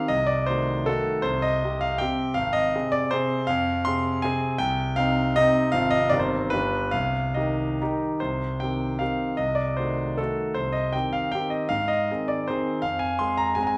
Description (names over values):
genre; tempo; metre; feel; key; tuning
classical, romantic triple-time dance for piano with dotted rhythms; 133-174 BPM; 3/4; rubato; C minor; A4 = 439 Hz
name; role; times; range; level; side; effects
clear concert grand piano; solo; 0.0-13.8 s; G1 to C6; -25 LUFS; equal; none
room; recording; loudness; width
wet recital hall reverb, RT60 1.4 s; none; -25 LUFS; mono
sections
0.0-8.2 A section; 8.2-13.8 B section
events
none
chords
0.1 Cdim7; 1.3 Cm; 2.4 Ab; 3.5 Fm; 4.6 Cm; 5.7 Fm/Ab; 6.1 Cm/G; 6.5 G7; 6.9 Cm; 9.4 Cdim7; 10.6 Cm; 11.7 Ab; 12.8 Fm